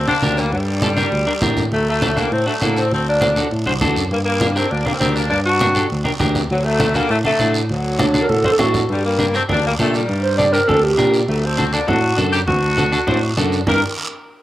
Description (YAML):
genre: latin, cumbia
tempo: 201 BPM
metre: 4/4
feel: straight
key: G harmonic minor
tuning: A4 = 440 Hz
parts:
  - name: bright saxophone section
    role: melody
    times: 0.0-13.8 s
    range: D3 to Bb4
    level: -20 LUFS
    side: left 1 dB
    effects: cassette tape
  - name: barky tine electric piano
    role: bass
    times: 0.0-13.8 s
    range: C2 to Bb2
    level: -21 LUFS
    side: equal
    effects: none
  - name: clean electric guitar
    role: accompaniment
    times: 0.1-13.8 s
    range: D4 to C5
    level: -22 LUFS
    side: equal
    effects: none
  - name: congas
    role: percussion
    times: 0.1-13.7 s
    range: none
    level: -24 LUFS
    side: equal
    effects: none
  - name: guiro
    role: percussion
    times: 0.2-13.7 s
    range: none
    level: -28 LUFS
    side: right 3 dB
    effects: none
  - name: breathy clarinet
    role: second line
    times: 8.0-11.2, 13.7-13.8 s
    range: D4 to D5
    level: -18 LUFS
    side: right 2 dB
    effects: none
room: wet spring reverb, RT60 1.8 s, small room ambience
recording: home recording on cassette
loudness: -15 LUFS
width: side -14 dB against mid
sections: 0.0-8.9 A section; 8.9-13.7 B section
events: drum fill 8.2-8.9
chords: 0.0 Gm; 1.7 D; 4.1 Gm; 6.5 D; 8.9 Gm; 11.3 D; 13.7 Gm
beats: 0.22 | 0.52 0.82 1.12 1.42 | 1.72 2.02 2.32 2.62 | 2.92 3.21 3.52 3.81 | 4.11 4.41 4.71 5.01 | 5.31 5.61 5.91 6.21 | 6.51 6.80 7.10 7.40 | 7.70 8.00 8.30 8.60 | 8.90 9.20 9.49 9.79 | 10.09 10.39 10.69 10.99 | 11.29 11.59 11.88 12.18 | 12.48 12.78 13.08 13.38 | 13.67